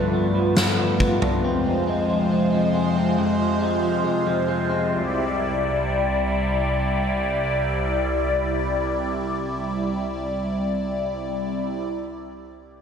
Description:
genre	dream pop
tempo	69 BPM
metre	4/4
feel	straight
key	C major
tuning	A4 = 440 Hz
part	phased analog pad	sustained chords	0.0-11.8 s	C2 to D5	-22 LUFS	equal	phaser, chorus
part	electric guitar at the edge of break-up	arpeggios	0.0-5.5 s	F2 to D4	-24 LUFS	left 3 dB	lush chorus, ping-pong delay
part	huge arena drum kit	drums	0.6-1.4 s	kick drum, snare drum, toms	-24 LUFS	equal	gated reverb
room	wet plate reverb, RT60 2.8 s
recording	bright 1980s-style digital production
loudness	-20 LUFS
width	side -7 dB against mid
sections	0.0-11.9 A section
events	none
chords	0.0 Gadd9; 1.4 Fm; 4.9 Cadd9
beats	0.56 | 1.43 2.30 3.17 4.04 | 4.91 5.78 6.65 7.52 | 8.39 9.26 10.13 11.00

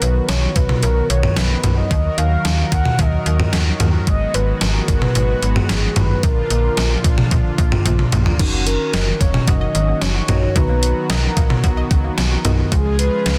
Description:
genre	synth-pop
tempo	111 BPM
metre	4/4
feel	straight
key	unclear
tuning	A4 = 440 Hz
part	mellow horn-like synth lead	melody	0.0-13.4 s	Gb4 to Gb5	-26 LUFS	equal	chorus
part	brassy analog pad	sustained chords	0.0-13.4 s	Db3 to Ab4	-28 LUFS	equal	chorus
part	slap-like FM bass	bass	0.0-13.4 s	F1 to Eb2	-21 LUFS	equal	none
part	gated 80s digital drum machine	drums	0.0-13.4 s	crash cymbal, hi-hat, kick drum, snare drum, toms	-20 LUFS	equal	gated reverb, gated reverb snare, overdrive
part	muted felt-like synth keys	accompaniment	8.4-13.4 s	Ab3 to A#5	-30 LUFS	equal	chorus
part	analog pluck	arpeggios	8.4-13.3 s	Eb3 to F5	-31 LUFS	equal	chorus, delay
room	light reverb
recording	dense, heavily limited modern master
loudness	-17 LUFS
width	mono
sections	0.0-8.4 A section; 8.4-13.4 B section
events	drum fill 7.9-8.4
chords	0.0 B; 1.9 Ebm; 4.1 Abm7; 6.2 Bb; 8.4 Gb6; 10.6 Bmaj7; 12.7 Db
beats	0.29 0.83 1.37 | 1.91 2.45 2.99 3.53 | 4.07 4.61 5.15 5.69 | 6.23 6.77 7.31 7.85 | 8.39 8.94 9.48 10.02 | 10.56 11.10 11.64 12.18 | 12.72 13.26

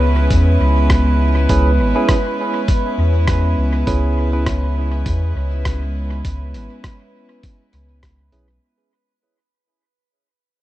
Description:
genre	ambient dub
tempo	101 BPM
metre	4/4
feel	swing 56% on 16ths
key	C# minor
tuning	A4 = 440 Hz
part	warm chamber string section	sustained chords	0.0-8.6 s	G#3 to B4	-22 LUFS	equal	none
part	soft dub sub bass	bass	0.0-8.6 s	G#1 to E2	-16 LUFS	equal	none
part	drifting glass-harmonics texture	texture	0.0-8.6 s	B4	-28 LUFS	right 8 dB	chorus, built-in reverb
part	electronic kick drum	drums	0.3-8.2 s	none	-19 LUFS	equal	small room ambience
part	lo-fi sampler-style drum kit	drums	0.3-8.5 s	hi-hat, rim click	-28 LUFS	equal	small room ambience, dub echo
part	barky tine electric piano	stabs	1.5-4.4, 8.3-8.5 s	C#4 to B4	-25 LUFS	right 2 dB	dub echo
room	light reverb, digital ambience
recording	dark, warm production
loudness	-14 LUFS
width	side -15 dB against mid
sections	0.0-8.6 A section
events	fade-out 2.3-8.6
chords	0.0 C#m7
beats	0.31 0.90 | 1.50 2.09 2.68 3.28 | 3.87 4.47 5.06 5.65 | 6.25 6.84 7.44 8.03

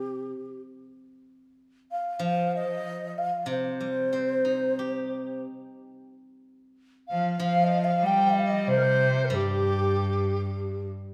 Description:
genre	chinese traditional, Chinese chamber ensemble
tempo	94 BPM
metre	4/4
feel	rubato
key	C yu mode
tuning	A4 = 440 Hz
part	breathy mellow xiao	melody	0.0-10.9 s	G4 to G5	-30 LUFS	equal	none
part	steel-string zither	accompaniment	0.0-11.1 s	C3 to G4	-36 LUFS	equal	none
part	bright cello	second line	7.1-10.9 s	G2 to G3	-29 LUFS	equal	none
part	mellow large dizi	second line	7.1-10.9 s	G4 to G5	-30 LUFS	equal	none
room	wet recital hall reverb, RT60 1.6 s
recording	none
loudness	-27 LUFS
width	mono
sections	0.0-6.1 A section; 6.1-11.1 B section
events	none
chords	none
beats	0.33 | 0.97 1.60 2.23 2.86 | 3.49 4.13 4.78 5.46 | 6.12 6.77 7.41 8.04 | 8.68 9.31 9.94 10.57

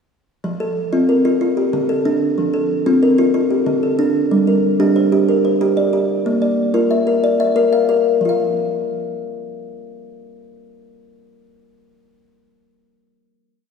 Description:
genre	southern african traditional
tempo	123 BPM (dotted quarters)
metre	12/8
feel	straight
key	unclear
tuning	A4 = 440 Hz
part	kalimba	solo	0.4-12.4 s	D3 to F5	-15 LUFS	equal	none
room	wet concert hall reverb, RT60 2.1 s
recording	recorded in a church or concert hall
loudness	-14 LUFS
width	side -6 dB against mid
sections	0.4-8.2 A section; 8.2-12.2 final note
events	none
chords	0.4 F; 1.4 Dm; 2.4 F; 3.3 Dm; 4.3 Gm; 6.3 Bb; 8.2 N.C.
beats	| 0.45 0.93 1.41 1.90 | 2.38 2.86 3.34 3.83 | 4.31 4.80 5.28 5.77 | 6.25 6.74 7.23 7.72 | 8.21 8.71 9.20 9.69 | 10.19 10.68 11.17 11.67

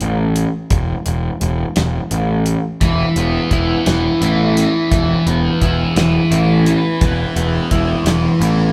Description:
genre	psychedelic rock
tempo	57 BPM (dotted quarters)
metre	6/8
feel	straight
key	unclear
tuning	A4 = 439 Hz
part	fuzz picked electric bass	bass	0.0-8.7 s	E1 to A1	-19 LUFS	equal	overdrive
part	damped 70s drum kit	drums	0.0-8.6 s	hi-hat, kick drum, snare drum	-22 LUFS	equal	none
part	thick fuzz guitar	riff	2.8-8.7 s	E3 to E4	-18 LUFS	equal	distortion, phaser
room	wet large studio reverb, RT60 1.4 s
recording	band playing live in one room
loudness	-16 LUFS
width	mono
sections	0.0-8.7 A section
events	none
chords	0.0 E5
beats	| 0.71 1.76 | 2.81 3.86 | 4.91 5.96 | 7.01 8.06

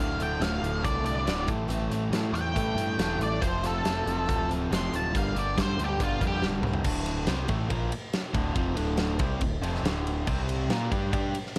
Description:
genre	classic rock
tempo	140 BPM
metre	4/4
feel	straight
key	D minor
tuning	A4 = 440 Hz
part	octave-fuzz lead guitar	melody	0.0-6.5 s	F4 to C6	-34 LUFS	equal	wah, distortion
part	picked plugged-in twelve-string acoustic guitar	accompaniment	0.0-6.9 s	A2 to Bb4	-44 LUFS	equal	none
part	crunchy overdriven guitar	riff	0.0-11.3 s	D2 to Bb4	-36 LUFS	equal	none
part	overdriven electric guitar	riff	0.0-11.3 s	D2 to Bb4	-37 LUFS	equal	none
part	growling picked electric bass	bass	0.0-11.3 s	D1 to Bb2	-34 LUFS	equal	overdrive
part	big rock drum kit	drums	0.2-11.6 s	crash cymbal, hi-hat, kick drum, ride cymbal, snare drum, toms	-33 LUFS	equal	none
room	small room ambience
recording	none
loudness	-28 LUFS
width	mono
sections	0.0-6.9 A section; 6.9-11.6 B section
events	lead electric guitar solo 0.0-6.9; drum fill 6.4-6.9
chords	0.0 Dm; 1.5 Am7; 3.4 F; 5.1 Gm; 6.9 Dm; 10.3 C5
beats	0.41 0.84 1.27 | 1.70 2.13 2.56 2.99 | 3.42 3.85 4.28 4.71 | 5.14 5.57 6.00 6.43 | 6.86 7.28 7.71 8.14 | 8.57 9.00 9.42 9.85 | 10.28 10.71 11.14 11.56

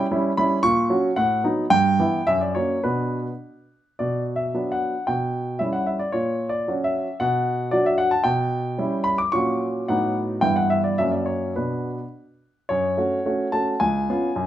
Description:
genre	classical-period piano sonatina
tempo	101-116 BPM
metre	2/4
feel	rubato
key	B minor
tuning	A4 = 440 Hz
part	warm baby grand piano	solo	0.0-14.5 s	C#2 to D6	-20 LUFS	equal	none
room	light reverb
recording	minimal, uncompressed stereo recording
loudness	-20 LUFS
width	side -12 dB against mid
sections	0.0-4.0 A section; 4.0-12.7 A section; 12.7-14.5 B section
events	none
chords	0.0 C#m7b5; 0.6 F#/A#; 1.2 B7/A; 1.7 Em/G; 2.3 F#; 2.8 Bm; 5.1 C#m7b5/B; 6.1 F#/A#; 7.2 Bm; 8.3 C#m7b5/B; 9.3 F#/A#; 9.9 B7/A; 10.4 Em/G; 11.0 F#; 11.6 Bm; 12.7 F#m; 13.8 C#7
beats	0.11 | 0.65 1.18 | 1.72 2.27 | 2.84 3.43 | 4.01 4.55 | 5.09 5.62 | 6.14 6.68 | 7.21 7.74 | 8.26 8.79 | 9.33 9.88 | 10.43 10.98 | 11.55 12.13 | 12.70 13.26 | 13.82 14.37

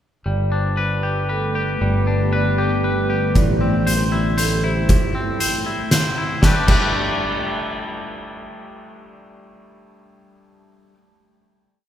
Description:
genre	post-rock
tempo	117 BPM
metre	3/4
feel	straight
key	G major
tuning	A4 = 439 Hz
part	ethereal airy pad	sustained chords	1.0-4.9 s	D3 to G4	-26 LUFS	equal	ensemble chorus, built-in reverb, phaser
part	twangy electric guitar	arpeggios	0.3-11.0 s	A2 to C5	-23 LUFS	left 2 dB	none
part	vibraphone with soft mallets	arpeggios	0.3-4.9 s	A4 to D5	-28 LUFS	right 1 dB	none
part	growling fingered electric bass	bass	0.3-4.9 s	G1 to A1	-22 LUFS	equal	overdrive
part	oversized low-tuned drum kit	drums	3.4-6.8 s	crash cymbal, hi-hat, kick drum, snare drum	-19 LUFS	equal	none
room	wet church reverb, RT60 3.3 s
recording	recorded in a church or concert hall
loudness	-17 LUFS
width	side -10 dB against mid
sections	0.3-6.4 A section; 6.4-9.5 final chord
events	none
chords	0.3 Gadd9; 3.4 Am7; 6.4 Gadd9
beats	| 0.26 0.78 1.30 | 1.81 2.33 2.85 | 3.36 3.87 4.38 | 4.90 5.41 5.92 | 6.43 6.94 7.45 | 7.96 8.47 8.98

